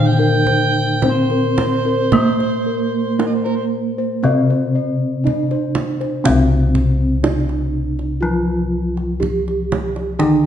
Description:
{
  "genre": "Javanese gamelan",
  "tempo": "53-61 BPM",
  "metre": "4/4",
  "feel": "straight",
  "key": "C slendro",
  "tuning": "A4 = 440 Hz",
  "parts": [
    { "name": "gamelan-type bronze metallophone", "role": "melody", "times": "0.0-10.5 s", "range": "Bb3-25c to G4", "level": "-21 LUFS", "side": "right 3 dB", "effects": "none" },
    { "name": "overdriven harmonica", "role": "second line", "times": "0.0-3.6 s", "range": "Bb4-22c to G5", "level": "-22 LUFS", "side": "right 5 dB", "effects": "none" },
    { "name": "gamelan-type bronze metallophone", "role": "accompaniment", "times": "0.0-10.5 s", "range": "C3 to Bb3-25c", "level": "-22 LUFS", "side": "left 2 dB", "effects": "none" },
    { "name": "gamelan-type bossed gongs", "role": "arpeggios", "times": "0.0-6.3 s", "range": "Bb4-25c to Eb5-45c", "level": "-24 LUFS", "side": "left 7 dB", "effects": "none" },
    { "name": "gamelan-type bossed gongs", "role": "bass", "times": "0.0-10.5 s", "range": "C2 to Bb4-25c", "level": "-21 LUFS", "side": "left 1 dB", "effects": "none" },
    { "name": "kendang", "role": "percussion", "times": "0.2-10.4 s", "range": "none", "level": "-24 LUFS", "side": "right 5 dB", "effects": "none" }
  ],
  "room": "moderate recital hall reverb, RT60 1.5 s",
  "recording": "nothing above 10.3 kHz",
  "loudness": "-15 LUFS",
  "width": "side -9 dB against mid",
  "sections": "0.0-6.2 A section; 6.2-10.5 B section",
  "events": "none",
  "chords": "none"
}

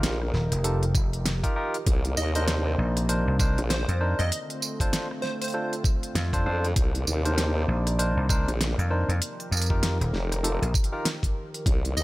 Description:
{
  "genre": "glitch hop",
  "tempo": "98 BPM",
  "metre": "4/4",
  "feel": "swing 60% on 16ths",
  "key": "unclear",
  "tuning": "A4 = 441 Hz",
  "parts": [
    { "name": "warm analog pad", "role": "sustained chords", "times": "0.0-12.0 s", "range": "C3 to D5", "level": "-36 LUFS", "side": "equal", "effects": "chorus, sidechain pumping" },
    { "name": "barky tine electric piano", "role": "stabs", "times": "0.0-11.1 s", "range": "D4 to C5", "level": "-32 LUFS", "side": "equal", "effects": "overdrive, sidechain pumping, dub echo" },
    { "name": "formant-sweep wobble bass", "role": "bass", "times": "0.0-12.0 s", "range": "F1 to F2", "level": "-26 LUFS", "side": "equal", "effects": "chorus" },
    { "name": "pop drum kit", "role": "drums", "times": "0.0-12.0 s", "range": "hi-hat, rim click, snare drum, tambourine", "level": "-30 LUFS", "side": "equal", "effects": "small room ambience" },
    { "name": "vintage slap bass", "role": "bass", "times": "0.3-10.7 s", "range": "Eb1 to F2", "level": "-25 LUFS", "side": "equal", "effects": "none" },
    { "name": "electronic kick drum", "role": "drums", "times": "0.9-11.8 s", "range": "none", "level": "-25 LUFS", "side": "equal", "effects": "small room ambience" },
    { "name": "plucky unison lead", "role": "melody", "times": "2.2-5.5, 12.0 s", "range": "C5 to Eb5", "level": "-34 LUFS", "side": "equal", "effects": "dub echo" }
  ],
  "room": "little or no reverb",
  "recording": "none",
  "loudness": "-23 LUFS",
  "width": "side -18 dB against mid",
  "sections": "0.0-12.0 A section",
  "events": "none",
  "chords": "0.0 F9sus4; 1.9 Cm9; 4.3 Dm7; 6.8 Cm9; 9.2 F9sus4"
}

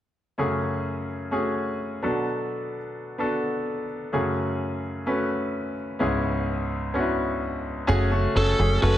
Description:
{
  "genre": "pop",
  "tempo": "128 BPM",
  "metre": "4/4",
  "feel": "straight",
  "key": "F# minor",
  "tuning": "A4 = 439 Hz",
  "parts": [
    { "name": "bright concert grand piano", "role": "accompaniment", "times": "0.4-9.0 s", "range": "C#2 to B4", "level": "-25 LUFS", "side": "equal", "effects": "none" },
    { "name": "plucky analog bass", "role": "bass", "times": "7.9-9.0 s", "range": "F#1", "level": "-21 LUFS", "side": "equal", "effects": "none" },
    { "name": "biting lead guitar", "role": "melody", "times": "8.4-9.0 s", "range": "A4 to B4", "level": "-24 LUFS", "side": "right 2 dB", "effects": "overdrive" }
  ],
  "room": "moderate large studio reverb, RT60 1.3 s, small room ambience",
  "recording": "none",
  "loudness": "-24 LUFS",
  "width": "side -12 dB against mid",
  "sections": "0.4-7.9 A section; 7.9-9.0 B section",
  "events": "none",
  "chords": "0.4 F#madd9; 2.0 Bm7; 4.1 F#madd9; 6.0 C#m7; 7.9 F#madd9"
}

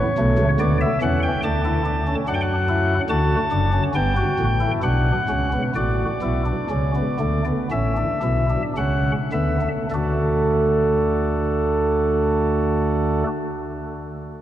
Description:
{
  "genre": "classical, baroque-style 3-part fugue for pipe organ",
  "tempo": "51-72 BPM",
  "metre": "4/4",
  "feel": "straight",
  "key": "D major",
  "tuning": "A4 = 443 Hz",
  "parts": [
    { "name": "chamber organ, flutes", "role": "solo", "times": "0.0-13.3 s", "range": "F#1 to A5", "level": "-18 LUFS", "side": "equal", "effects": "none" }
  ],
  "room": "wet cathedral reverb, RT60 5.3 s",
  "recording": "none",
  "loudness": "-18 LUFS",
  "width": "side -12 dB against mid",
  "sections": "0.0-9.9 A section; 9.9-14.4 B section",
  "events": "slowing down 0.6-9.9",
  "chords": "0.0 A; 0.6 D; 2.3 D/F#; 4.0 Em7/G; 5.8 D/A; 9.9 D"
}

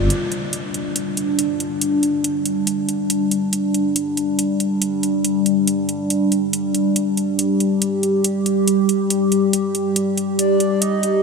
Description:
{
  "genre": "deep dubstep",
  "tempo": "140 BPM",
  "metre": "4/4",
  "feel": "swing 61% on 16ths, half-time",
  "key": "unclear",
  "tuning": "A4 = 440 Hz",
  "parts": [
    { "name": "dark analog pad", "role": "sustained chords", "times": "0.0-11.2 s", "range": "G3 to G4", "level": "-18 LUFS", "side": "equal", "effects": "chorus, phaser" },
    { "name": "electronic hi-hat", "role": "drums", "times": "0.1-11.1 s", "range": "none", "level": "-23 LUFS", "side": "right 1 dB", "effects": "none" },
    { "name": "breathy flute-like synth lead", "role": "melody", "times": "10.4-11.2 s", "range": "D5 to Eb5", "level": "-28 LUFS", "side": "left 1 dB", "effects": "lush chorus, dub echo" }
  ],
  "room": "wet huge ambient reverb, RT60 7.8 s",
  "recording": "dreamy mix soaked in reverb",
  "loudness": "-17 LUFS",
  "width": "side -4 dB against mid",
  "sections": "0.1-11.2 A section",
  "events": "none",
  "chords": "0.1 G5"
}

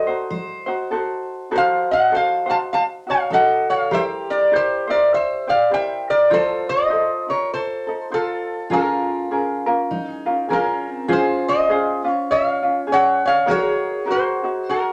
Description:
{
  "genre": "Hawaiian",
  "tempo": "100 BPM",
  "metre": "4/4",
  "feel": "swing 60% on 8ths",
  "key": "unclear",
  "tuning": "A4 = 444 Hz",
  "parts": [
    { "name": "lap resonator guitar", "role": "melody", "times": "0.0-14.9 s", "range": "F4 to A5", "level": "-20 LUFS", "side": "equal", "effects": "none" },
    { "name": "fingerpicked steel-string acoustic guitar", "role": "second line", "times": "0.0-14.9 s", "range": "Db4 to C5", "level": "-31 LUFS", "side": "equal", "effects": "none" },
    { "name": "ukulele", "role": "accompaniment", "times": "0.0-14.9 s", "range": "Db4 to Db5", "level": "-26 LUFS", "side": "equal", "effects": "none" }
  ],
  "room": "wet studio ambience, RT60 0.5 s",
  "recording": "none",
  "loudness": "-20 LUFS",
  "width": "mono",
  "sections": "0.0-11.1 A section; 11.1-14.9 A section",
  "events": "none",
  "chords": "0.0 F7b9; 3.9 C7; 6.3 F7; 8.7 Bbm7; 11.1 Dbmaj9; 13.5 Ebm7"
}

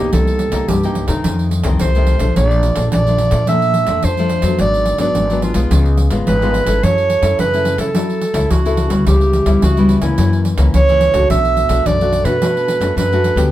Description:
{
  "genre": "samba and choro",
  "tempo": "107 BPM",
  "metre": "4/4",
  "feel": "straight",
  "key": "unclear",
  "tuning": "A4 = 440 Hz",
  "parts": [
    { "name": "warm clarinet", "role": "melody", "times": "0.0-13.5 s", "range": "Eb4 to E5", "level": "-17 LUFS", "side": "right 3 dB", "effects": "none" },
    { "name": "nylon-string guitar", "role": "accompaniment", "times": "0.0-13.5 s", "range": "F2 to A4", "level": "-19 LUFS", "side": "left 3 dB", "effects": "none" },
    { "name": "upright bass", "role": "bass", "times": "0.0-13.5 s", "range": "G#1 to F#3", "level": "-16 LUFS", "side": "equal", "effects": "none" },
    { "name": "pandeiro", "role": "percussion", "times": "0.1-13.5 s", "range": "none", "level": "-22 LUFS", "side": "right 2 dB", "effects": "none" }
  ],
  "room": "moderate studio reverb, RT60 0.6 s",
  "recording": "band playing live in one room",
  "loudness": "-12 LUFS",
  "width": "side -13 dB against mid",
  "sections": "0.0-13.5 A section",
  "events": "none",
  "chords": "0.1 Cm7; 1.2 F7; 2.4 Bbmaj7; 4.6 G#m7b5; 5.7 C#7; 6.8 F#m7; 9.1 C#m7b5; 10.2 F#7; 11.3 Bm7"
}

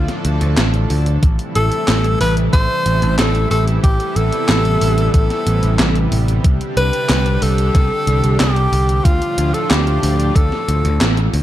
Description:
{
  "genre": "synthwave",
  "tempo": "92 BPM",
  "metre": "4/4",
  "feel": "straight",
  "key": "A minor",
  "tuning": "A4 = 438 Hz",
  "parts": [
    { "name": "clear tenor saxophone", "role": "melody", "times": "0.0-11.3 s", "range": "F4 to C5", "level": "-20 LUFS", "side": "left 1 dB", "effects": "tape echo" },
    { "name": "lush unison pad", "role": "sustained chords", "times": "0.0-11.4 s", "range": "A2 to A4", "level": "-23 LUFS", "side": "right 1 dB", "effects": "chorus, sidechain pumping" },
    { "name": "picked electric bass", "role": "bass", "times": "0.0-11.4 s", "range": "A1 to D2", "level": "-16 LUFS", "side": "equal", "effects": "sidechain pumping" },
    { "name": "gated 80s digital drum machine", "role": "drums", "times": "0.1-11.4 s", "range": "handclaps, hi-hat, snare drum", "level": "-20 LUFS", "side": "equal", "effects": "gated reverb, gated reverb snare" },
    { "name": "electronic kick drum", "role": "drums", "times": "1.2-10.5 s", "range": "none", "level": "-14 LUFS", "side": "equal", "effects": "none" }
  ],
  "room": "light reverb",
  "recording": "dark, warm production",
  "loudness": "-13 LUFS",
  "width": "side -13 dB against mid",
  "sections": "0.0-11.4 A section",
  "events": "kick drops out 11.0-11.4; band accent 11.0-11.3",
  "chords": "0.0 Dm; 1.2 Am7; 6.4 Csus2; 9.1 Dm"
}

